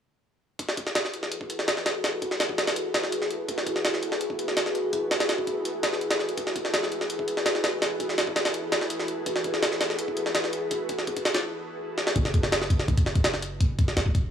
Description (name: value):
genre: drum and bass, jungle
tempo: 166 BPM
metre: 4/4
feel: straight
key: F# minor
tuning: A4 = 440 Hz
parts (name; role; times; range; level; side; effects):
- jungle sampler-style drum kit; drums; 0.6-14.2 s; hi-hat, kick drum, snare drum; -25 LUFS; equal; high-pass filter on kick, studio reverb, high-pass filter on hats, high-pass filter on snare
- warm 808-style bass; bass; 12.2-14.3 s; E1 to F#1; -30 LUFS; equal; none
room: moderate echo chamber reverb, RT60 2.0 s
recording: dry, gritty hardware recording, transformer saturation, small room ambience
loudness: -24 LUFS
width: side -8 dB against mid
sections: 0.6-12.2 A section; 12.2-14.3 B section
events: break 11.4-12.2; drum fill 12.0; drop 12.2-14.3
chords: none